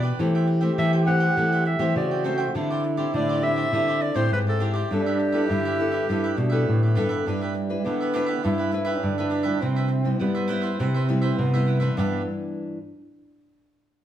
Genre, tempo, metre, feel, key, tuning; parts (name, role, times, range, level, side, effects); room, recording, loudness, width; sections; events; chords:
samba; 102 BPM; 4/4; straight; G major; A4 = 442 Hz
clear clarinet; melody; 0.0-6.9 s; G4 to F#5; -27 LUFS; equal; plate reverb
cavaquinho; accompaniment; 0.0-12.2 s; D4 to G5; -33 LUFS; right 4 dB
nylon-string guitar; accompaniment; 0.0-12.8 s; G2 to B4; -29 LUFS; left 3 dB
nylon-string guitar; bass; 0.0-12.2 s; G2 to G3; -24 LUFS; equal
warm trombone; second line; 0.2-12.2 s; G3 to G4; -28 LUFS; right 4 dB
wet large studio reverb, RT60 1.1 s; heard from further back in the room; -21 LUFS; side -11 dB against mid
0.0-7.3 A section; 7.3-12.0 B section; 12.0-14.0 C section
0.2 Am7/E; 2.6 D9sus4; 4.9 G69; 7.3 G6; 9.6 Cmaj7; 12.0 G6